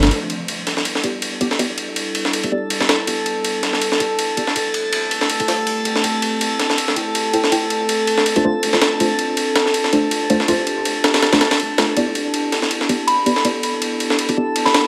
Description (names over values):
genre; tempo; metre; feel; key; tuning
drum and bass, jungle; 162 BPM; 4/4; swing 55% on 16ths; E phrygian; A4 = 440 Hz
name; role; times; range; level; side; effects
warbly tape-like pad; sustained chords; 0.0-14.9 s; G3 to A4; -29 LUFS; equal; chorus, built-in reverb
breakbeat sampler-style drum kit; drums; 0.0-14.8 s; ride cymbal, snare drum; -21 LUFS; equal; high-pass filter on kick, high-pass filter on cymbals, high-pass filter on snare
filtered dub chord stab; stabs; 0.1-14.7 s; A3 to G5; -25 LUFS; equal; subtle chorus, cassette tape, dub echo
drifting glass-harmonics texture; texture; 1.3-14.9 s; A4 to A5; -25 LUFS; equal; chorus, built-in reverb
soft synth bell; melody; 13.1-14.9 s; B5; -22 LUFS; equal; chorus, dub echo
room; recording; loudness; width
moderate plate reverb, RT60 1.6 s, digital ambience; vinyl crackle; -18 LUFS; mono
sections
0.1-14.9 A section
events
filter sweep on ambient pad 0.1-14.9; filter sweep on synth stab 0.1-14.9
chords
0.1 Em7; 4.6 Am7; 8.3 Dm7; 12.0 Em7